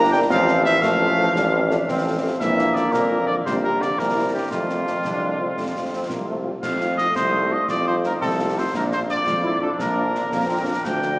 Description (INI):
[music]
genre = military-style march for wind band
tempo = 114 BPM (dotted quarters)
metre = 6/8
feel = straight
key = F major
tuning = A4 = 440 Hz
[part]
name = warm cornet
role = melody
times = 0.0-11.2 s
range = F4 to G5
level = -22 LUFS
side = equal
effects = none
[part]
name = mellow euphonium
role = second line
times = 0.0-6.4 s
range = F2 to G3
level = -26 LUFS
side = equal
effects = none
[part]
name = dark French horn section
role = accompaniment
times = 0.0-11.1 s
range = G3 to Bb4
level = -32 LUFS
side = left 1 dB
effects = none
[part]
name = warm trombone section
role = sustained chords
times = 0.0-11.2 s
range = G3 to F4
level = -27 LUFS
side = equal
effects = none
[part]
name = warm tuba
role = bass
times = 0.0-11.2 s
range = G1 to F2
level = -24 LUFS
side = equal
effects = none
[part]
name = concert snare drum, concert bass drum and clash cymbals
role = drums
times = 0.3-11.2 s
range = none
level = -33 LUFS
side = equal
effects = none
[sound]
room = wet church reverb, RT60 3.9 s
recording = recorded in a church or concert hall, small speaker sound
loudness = -18 LUFS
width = side -22 dB against mid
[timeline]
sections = 0.0-6.6 A section; 6.6-11.2 A section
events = none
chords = 0.3 F/A; 2.4 Bb; 3.5 Gm/Bb; 4.0 C7; 4.5 F; 6.6 F7; 8.7 Bb